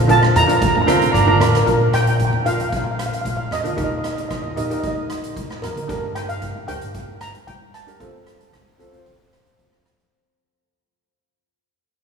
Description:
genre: calypso.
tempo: 114 BPM.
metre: 4/4.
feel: straight.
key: Bb major.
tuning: A4 = 440 Hz.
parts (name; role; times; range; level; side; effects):
steel pan; melody; 0.0-9.6 s; Bb4 to Bb5; -21 LUFS; right 2 dB; none.
upright bass; bass; 0.0-10.0 s; F1 to G3; -23 LUFS; equal; none.
steel pan; accompaniment; 0.1-9.6 s; C4 to C5; -24 LUFS; equal; none.
street-band drum kit; drums; 0.1-10.1 s; hi-hat, kick drum, rim click; -27 LUFS; right 1 dB; none.
congas; percussion; 0.4-5.9 s; none; -26 LUFS; equal; none.
edgy alto saxophone; second line; 0.9-1.7 s; C4 to D4; -27 LUFS; right 7 dB; none.
room: wet cathedral reverb, RT60 5.0 s.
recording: recorded in a church or concert hall, small room ambience.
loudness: -16 LUFS.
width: side -6 dB against mid.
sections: 0.0-1.7 A section; 1.7-10.1 B section.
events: fade-out 1.7-10.1.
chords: 0.0 Bb; 3.8 Eb; 5.9 Gm; 8.0 F.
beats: 0.09 0.61 1.14 | 1.67 2.19 2.72 3.25 | 3.77 4.30 4.83 5.36 | 5.89 6.41 6.94 7.47 | 8.00 8.53 9.06 9.59.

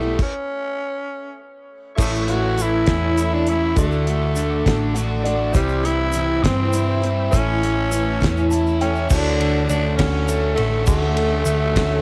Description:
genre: folk rock and heartland rock.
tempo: 67 BPM (dotted quarters).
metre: 6/8.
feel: straight.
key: D major.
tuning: A4 = 441 Hz.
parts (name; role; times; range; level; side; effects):
raspy tenor saxophone; melody; 0.0-12.0 s; G3 to F#4; -26 LUFS; equal; analog delay.
dark grand piano; accompaniment; 0.0-12.0 s; E4 to A5; -34 LUFS; equal; none.
picked steel-string acoustic guitar; accompaniment; 0.0-12.0 s; A2 to F#4; -27 LUFS; equal; cassette tape.
biting overdriven guitar; riff; 0.0-12.0 s; A2 to G4; -30 LUFS; equal; cassette tape.
hollow-body short-scale picked electric bass; bass; 0.0-12.0 s; A1 to G2; -25 LUFS; equal; none.
damped 70s drum kit; drums; 0.2-11.9 s; crash cymbal, hi-hat, kick drum, ride cymbal, snare drum; -25 LUFS; equal; cassette tape.
bright tonewheel organ; sustained chords; 2.0-12.0 s; A4 to E6; -37 LUFS; equal; none.
tube shaker; percussion; 2.0-11.6 s; none; -37 LUFS; equal; none.
room: moderate studio ambience, RT60 0.5 s.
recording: home recording on cassette.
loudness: -20 LUFS.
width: mono.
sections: 0.0-2.0 A section; 2.0-9.1 B section; 9.1-12.0 C section.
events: stop 0.2-2.0; grand piano fill 4.7-5.5, 8.2-9.1.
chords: 0.2 N.C.; 2.0 A; 3.8 D; 5.5 C; 7.3 A; 9.1 Dmaj7.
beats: | 0.19 1.09 | 1.98 2.87 | 3.77 4.66 | 5.55 6.44 | 7.33 8.21 | 9.10 9.99 | 10.87 11.76.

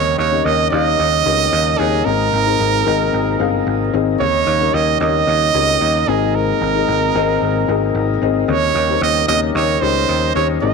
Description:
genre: piano-driven pop.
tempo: 112 BPM.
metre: 4/4.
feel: straight.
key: Eb mixolydian.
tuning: A4 = 440 Hz.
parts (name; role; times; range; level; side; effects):
bright trumpet; melody; 0.0-10.7 s; Ab4 to Eb5; -17 LUFS; right 10 dB; none.
felt-muted upright piano; accompaniment; 0.0-10.7 s; Ab2 to F5; -19 LUFS; left 14 dB; none.
overdriven tonewheel organ; sustained chords; 0.0-10.7 s; C3 to Eb4; -28 LUFS; equal; slow rotary speaker.
picked electric bass; bass; 0.0-10.7 s; G1 to Eb2; -21 LUFS; right 1 dB; none.
room: moderate spring reverb, RT60 1.9 s, small room ambience.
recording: 1960s-style stereo with parts hard left and right.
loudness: -14 LUFS.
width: side -4 dB against mid.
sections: 0.0-10.7 A section.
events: none.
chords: 0.0 Eb7; 2.1 Abadd9; 4.2 Eb7; 6.1 Abadd9; 8.5 Eb7.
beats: 0.46 0.99 1.53 | 2.06 2.60 3.13 3.67 | 4.21 4.74 5.28 5.81 | 6.35 6.88 7.42 7.95 | 8.49 9.02 9.56 10.09 | 10.63.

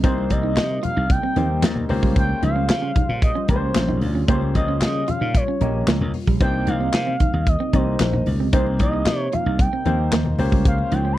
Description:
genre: early-eighties boogie funk.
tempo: 113 BPM.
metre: 4/4.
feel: straight.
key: Bb dorian.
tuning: A4 = 440 Hz.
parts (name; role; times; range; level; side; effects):
warm concert grand piano; accompaniment; 0.0-11.2 s; Bb3 to Eb5; -27 LUFS; left 3 dB; none.
warm analog pad; sustained chords; 0.0-11.2 s; C3 to C5; -31 LUFS; left 2 dB; chorus.
clean electric guitar; riff; 0.0-11.2 s; G3 to F4; -27 LUFS; right 8 dB; lush chorus.
slap bass; bass; 0.0-11.2 s; Bb1 to Db3; -22 LUFS; equal; none.
modern studio drum kit; drums; 0.0-11.0 s; handclaps, hi-hat, kick drum, snare drum; -20 LUFS; equal; none.
expressive synth lead; melody; 0.1-11.2 s; C5 to C6; -26 LUFS; equal; chorus, slapback echo.
congas; percussion; 0.2-11.0 s; none; -29 LUFS; left 4 dB; none.
room: little or no reverb.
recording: dry, close 1970s-style studio recording.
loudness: -18 LUFS.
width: side -14 dB against mid.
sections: 0.0-11.2 A section.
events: none.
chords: 0.0 Cm7; 1.9 Bbm69; 6.4 Cm7; 10.4 Bbm69.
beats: | 0.04 0.57 1.10 1.63 | 2.16 2.69 3.22 3.75 | 4.28 4.82 5.35 5.88 | 6.41 6.94 7.47 8.00 | 8.53 9.06 9.59 10.12 | 10.65.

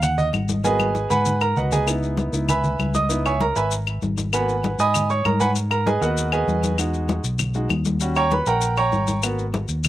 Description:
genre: Afro-Cuban jazz.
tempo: 196 BPM.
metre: 4/4.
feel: straight.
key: G# minor.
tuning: A4 = 439 Hz.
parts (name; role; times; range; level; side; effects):
clear grand piano; accompaniment; 0.0-9.4 s; G3 to D#6; -22 LUFS; right 2 dB; slapback echo.
fingered electric bass; bass; 0.0-9.9 s; G#1 to G#2; -24 LUFS; equal; none.
claves; percussion; 0.0-9.9 s; none; -28 LUFS; left 9 dB; none.
congas; percussion; 0.0-9.9 s; none; -27 LUFS; left 2 dB; none.
maracas; percussion; 0.0-9.9 s; none; -31 LUFS; left 9 dB; none.
room: little or no reverb.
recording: recorded outdoors, with no room sound.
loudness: -19 LUFS.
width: side -14 dB against mid.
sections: 0.0-9.9 A section.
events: grand piano solo 0.0-9.9; drum fill 0.6-1.9.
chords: 0.0 G#m7; 1.9 C#m7; 4.3 G#m7; 6.8 Emaj7; 8.0 D#7#9; 9.2 G#m7.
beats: 0.02 0.33 | 0.64 0.95 1.26 1.56 | 1.87 2.18 2.49 2.80 | 3.10 3.41 3.72 4.02 | 4.33 4.64 4.95 5.25 | 5.56 5.86 6.17 6.48 | 6.78 7.09 7.39 7.70 | 8.01 8.31 8.62 8.92 | 9.23 9.54 9.84.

